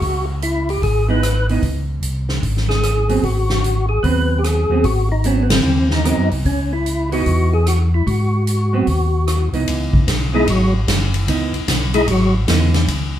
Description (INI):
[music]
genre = soul jazz organ trio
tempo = 149 BPM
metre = 4/4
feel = swing 65% on 8ths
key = C# minor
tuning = A4 = 444 Hz
[part]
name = percussive tonewheel organ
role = melody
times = 0.0-12.3 s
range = F#3 to B4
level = -20 LUFS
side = left 1 dB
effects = slow rotary speaker, overdrive, chorus vibrato
[part]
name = mellow tonewheel organ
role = bass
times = 0.0-13.2 s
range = F#1 to G#2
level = -18 LUFS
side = equal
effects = overdrive, chorus vibrato, slow rotary speaker
[part]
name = swinging big-band drum kit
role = drums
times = 0.0-13.0 s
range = hi-hat, kick drum, ride cymbal, rim click, snare drum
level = -22 LUFS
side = equal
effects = none
[part]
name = vintage hollow-body jazz guitar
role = accompaniment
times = 1.1-12.7 s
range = E3 to D#4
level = -22 LUFS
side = right 5 dB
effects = none
[sound]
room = wet studio reverb, RT60 0.9 s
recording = heard from further back in the room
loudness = -15 LUFS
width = side -11 dB against mid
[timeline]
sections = 0.0-9.7 A section; 9.7-13.2 B section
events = band accent 5.4; tonewheel organ solo 9.7-13.2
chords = 0.0 C#7(no3); 3.2 G#7#9; 6.5 C#m9; 8.1 G#7#9; 9.7 C#m9